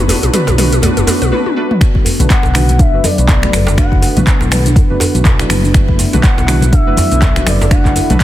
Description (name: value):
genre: afro house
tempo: 122 BPM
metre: 4/4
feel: swing 58% on 16ths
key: B minor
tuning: A4 = 442 Hz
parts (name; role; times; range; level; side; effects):
- warm analog pad; sustained chords; 0.0-8.2 s; D3 to C#5; -26 LUFS; right 1 dB; chorus, sidechain pumping
- deep mellow chord stab; stabs; 0.0-8.2 s; A3 to B4; -20 LUFS; right 2 dB; chorus, sidechain pumping, digital delay
- smooth synth bass; bass; 0.0-8.2 s; F#1 to B1; -14 LUFS; equal; sidechain pumping
- kalimba; arpeggios; 0.1-8.2 s; B3 to A4; -22 LUFS; left 2 dB; vintage 12-bit sampler grit, sidechain pumping, digital delay
- deep house drum kit; drums; 0.1-8.2 s; finger snaps, handclaps, hi-hat, shaker, toms; -17 LUFS; equal; overdrive
- djembe; percussion; 0.1-8.1 s; none; -20 LUFS; right 1 dB; none
- electronic kick drum; drums; 1.8-8.2 s; none; -11 LUFS; equal; none
- congas; percussion; 1.9-8.2 s; none; -21 LUFS; left 2 dB; none
- expressive synth lead; melody; 2.3-8.2 s; D5 to F#5; -20 LUFS; left 2 dB; lush chorus, digital delay
room: light reverb, digital ambience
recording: dense, heavily limited modern master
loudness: -9 LUFS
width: side -13 dB against mid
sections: 0.0-1.8 A section; 1.8-8.2 B section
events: build-up 0.0-1.8; drum fill 0.0-1.3, 1.3-1.8; filter sweep on kalimba 0.0-1.8; break 1.3-1.8; drop 1.8-8.2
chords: 0.0 Bm7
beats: 0.33 0.83 1.32 | 1.81 2.30 2.79 3.29 | 3.78 4.27 4.76 5.25 | 5.74 6.24 6.73 7.22 | 7.71 8.20